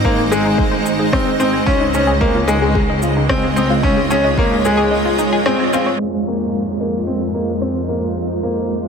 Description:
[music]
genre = piano and strings electronica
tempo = 111 BPM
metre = 4/4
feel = straight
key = F minor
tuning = A4 = 440 Hz
[part]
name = granular cloud pad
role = sustained chords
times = 0.0-8.9 s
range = Ab3 to F5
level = -19 LUFS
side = right 2 dB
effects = built-in reverb, wide subtle chorus, sidechain pumping
[part]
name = analog pluck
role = arpeggios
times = 0.0-5.9 s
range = Eb4 to Ab5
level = -23 LUFS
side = left 2 dB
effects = chorus, phaser, cassette tape, sidechain pumping, ping-pong delay
[part]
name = bright upright piano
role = riff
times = 0.0-8.7 s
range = Ab3 to Db4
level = -18 LUFS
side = left 1 dB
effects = ping-pong delay
[part]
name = muted symphonic double bass section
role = bass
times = 0.0-8.9 s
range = Ab1 to F2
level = -24 LUFS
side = equal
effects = sidechain pumping
[part]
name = electronic kick drum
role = drums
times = 0.0-4.5 s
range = none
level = -20 LUFS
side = right 1 dB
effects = none
[part]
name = electronic shaker and rim click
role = drums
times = 0.3-7.7 s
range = none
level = -27 LUFS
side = left 1 dB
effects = low-pass filter on perc, low-pass filter on snare
[part]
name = downlifter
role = sound effects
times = 6.0-8.9 s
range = none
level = -34 LUFS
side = left 1 dB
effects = none
[sound]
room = wet huge ambient reverb, RT60 7.6 s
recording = dreamy mix soaked in reverb, low-pass filter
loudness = -14 LUFS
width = side -6 dB against mid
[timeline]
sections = 0.0-6.0 A section; 6.0-8.9 B section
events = band accent 5.5; filter sweep 6.0-8.9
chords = 0.0 Ab; 1.7 Dbadd9; 6.0 Fm

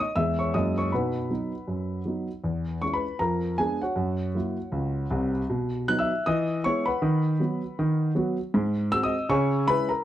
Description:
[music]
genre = jazz, stride piano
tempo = 158 BPM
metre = 4/4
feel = swing 60% on 8ths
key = B major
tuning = A4 = 440 Hz
[part]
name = dark grand piano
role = solo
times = 0.0-10.0 s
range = C2 to F#6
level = -24 LUFS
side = equal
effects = none
[sound]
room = moderate studio reverb, RT60 0.5 s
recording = dark, warm production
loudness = -24 LUFS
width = side -12 dB against mid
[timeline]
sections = 0.0-2.4 A section; 2.4-10.0 B section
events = none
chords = 0.2 E; 0.5 F#13; 0.9 B; 2.4 C#m/E; 3.2 Fdim7; 4.0 F#7; 5.5 B; 6.2 E; 7.0 B/D#; 8.5 G#7; 9.3 C#m

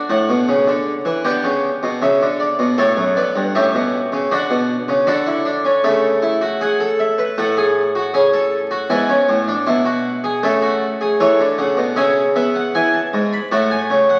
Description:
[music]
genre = classical, baroque-style 4-part fugue for harpsichord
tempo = 78 BPM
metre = 4/4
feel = straight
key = unclear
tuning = A4 = 440 Hz
[part]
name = harpsichord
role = solo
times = 0.0-14.2 s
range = F#2 to B5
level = -17 LUFS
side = equal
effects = none
[sound]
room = wet concert hall reverb, RT60 1.7 s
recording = very old 78 rpm record, vinyl crackle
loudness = -17 LUFS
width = mono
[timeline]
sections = 0.0-12.0 A section; 12.0-14.2 B section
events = none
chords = 0.0 D; 1.3 Em7; 2.8 A7; 4.3 D; 5.8 A/C#; 7.4 A6; 8.9 E7/G#; 10.4 A/C#; 13.5 N.C.

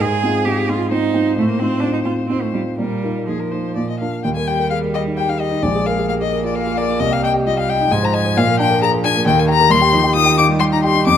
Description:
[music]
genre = quick classical-period movement for piano trio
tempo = 132 BPM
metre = 3/4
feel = rubato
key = Eb major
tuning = A4 = 440 Hz
[part]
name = rich violin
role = melody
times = 0.0-11.2 s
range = Ab4 to Eb6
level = -19 LUFS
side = left 7 dB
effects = none
[part]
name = rich cello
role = second line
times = 0.0-11.2 s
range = Eb3 to Ab4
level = -23 LUFS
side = right 6 dB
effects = none
[part]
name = warm grand piano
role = accompaniment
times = 0.0-11.2 s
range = Bb1 to Eb5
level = -18 LUFS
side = equal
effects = none
[sound]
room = moderate recital hall reverb, RT60 1.5 s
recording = close, detailed microphones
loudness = -15 LUFS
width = side -9 dB against mid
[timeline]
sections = 0.0-4.2 A section; 4.2-11.2 B section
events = none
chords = 0.0 Fm7/Ab; 1.4 F7/A; 2.8 Bbsus4; 3.8 Bb; 4.2 Eb; 5.6 Bb5; 7.0 Cm; 7.9 Ab; 8.4 Bb; 9.3 Eb; 9.7 Cm/Eb

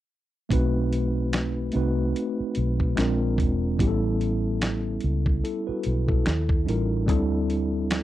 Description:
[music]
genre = R&B, neo-soul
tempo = 73 BPM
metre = 4/4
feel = swing 57% on 16ths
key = unclear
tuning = A4 = 439 Hz
[part]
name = mellow tine electric piano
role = accompaniment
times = 0.5-8.0 s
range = G3 to B4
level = -26 LUFS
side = equal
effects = medium stereo tremolo
[part]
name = vintage muted fingered electric bass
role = bass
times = 0.5-8.0 s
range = E1 to D#2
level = -26 LUFS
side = equal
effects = none
[part]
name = dusty soul sampler-style drum kit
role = drums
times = 0.5-8.0 s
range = finger snaps, hi-hat, kick drum, snare drum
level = -26 LUFS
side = equal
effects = none
[sound]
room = little or no reverb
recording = dry, close 1970s-style studio recording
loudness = -22 LUFS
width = side -14 dB against mid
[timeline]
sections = 0.5-8.0 A section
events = none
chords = 0.5 B7b9; 3.0 A#9; 3.8 A9; 6.3 D#9; 7.1 D9sus4

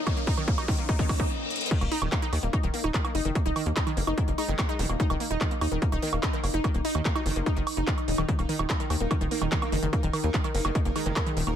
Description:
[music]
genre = psychedelic trance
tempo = 146 BPM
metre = 4/4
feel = straight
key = Eb minor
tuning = A4 = 440 Hz
[part]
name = pulsing gated texture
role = sustained chords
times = 0.0-11.6 s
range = Db4 to Eb5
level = -34 LUFS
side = equal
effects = chorus, built-in reverb, sidechain pumping
[part]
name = wide unison pluck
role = riff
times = 0.0-11.5 s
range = Db3 to Eb4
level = -32 LUFS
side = moving between left 4 dB and right 3 dB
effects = auto-pan, sidechain pumping, ping-pong delay
[part]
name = riser, reverse cymbal and zap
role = sound effects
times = 0.0-1.7, 4.8-4.9 s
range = none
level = -34 LUFS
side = left 3 dB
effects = none
[part]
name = granular cloud pad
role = texture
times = 0.0-1.3 s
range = Bb3 to Bb5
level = -41 LUFS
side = right 2 dB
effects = none
[part]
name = electronic kick drum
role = drums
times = 0.1-11.2 s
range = none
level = -27 LUFS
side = equal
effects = overdrive
[part]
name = techno drum kit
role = drums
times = 0.1-11.6 s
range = crash cymbal, handclaps, hi-hat, woodblock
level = -33 LUFS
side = right 3 dB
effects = high-pass filter on hats, high-pass filter on perc, high-pass filter on cymbals, high-pass filter on snare, high-pass filter on room
[part]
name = vowel-sweep wobble bass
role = second line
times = 0.6-11.4 s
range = Eb3 to Bb3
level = -42 LUFS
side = left 5 dB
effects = none
[part]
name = tight sequencer bass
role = bass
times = 1.8-11.5 s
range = Eb1 to Eb2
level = -29 LUFS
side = equal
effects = none
[sound]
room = light reverb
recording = none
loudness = -24 LUFS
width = side -10 dB against mid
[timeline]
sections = 0.0-1.7 A section; 1.7-11.6 B section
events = build-up 0.0-1.7; drum fill 0.0-1.3, 1.5; riser 0.0-1.3; filter sweep on synth texture 0.0-1.7; reverse cymbal 0.9-1.7; stop 1.3-1.7; drop 1.7-11.6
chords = 0.0 Eb5

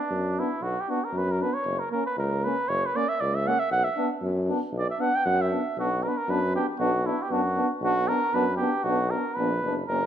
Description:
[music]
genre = balkan folk, Balkan brass band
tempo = 117 BPM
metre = 2/4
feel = swing 56% on 16ths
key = B harmonic minor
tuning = A4 = 440 Hz
[part]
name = cornet with cup mute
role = melody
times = 0.0-10.1 s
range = D4 to G5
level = -26 LUFS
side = right 2 dB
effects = none
[part]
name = clear tuba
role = bass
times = 0.1-10.1 s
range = F#1 to F#2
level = -29 LUFS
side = left 1 dB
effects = none
[part]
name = clear trombone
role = accompaniment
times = 0.4-10.0 s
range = C#4 to D4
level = -32 LUFS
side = left 8 dB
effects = none
[part]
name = warm euphonium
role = accompaniment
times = 0.4-10.0 s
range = A#3 to B3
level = -32 LUFS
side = right 5 dB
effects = none
[sound]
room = moderate recital hall reverb, RT60 1.5 s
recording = none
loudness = -24 LUFS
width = side -9 dB against mid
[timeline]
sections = 0.0-5.8 A section; 5.8-10.1 B section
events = cornet solo 0.0-5.8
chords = 0.0 Bm; 1.7 F#; 3.7 Bm

